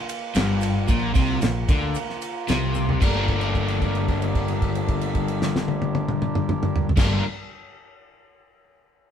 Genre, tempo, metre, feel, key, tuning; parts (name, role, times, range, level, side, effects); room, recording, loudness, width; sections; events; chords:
psychedelic rock; 112 BPM; 4/4; straight; G minor; A4 = 440 Hz
pedal harmonium; sustained chords; 0.0-7.2 s; Bb3 to Bb4; -33 LUFS; right 4 dB
damped 70s drum kit; drums; 0.1-7.1 s; crash cymbal, kick drum, ride cymbal, snare drum, toms; -24 LUFS; equal
maracas; percussion; 0.1-3.3 s; -46 LUFS; left 6 dB
crunchy overdriven guitar; riff; 0.3-7.2 s; G2 to Bb4; -24 LUFS; left 2 dB; harmonic tremolo
fuzz fingered electric bass; bass; 0.4-7.2 s; G1 to D2; -28 LUFS; equal; overdrive
moderate studio reverb, RT60 0.9 s; band playing live in one room; -20 LUFS; side -8 dB against mid
0.0-3.0 A section; 3.0-7.3 B section
drum fill 2.8; held note 3.0-7.0
0.0 Bb5; 3.0 Gm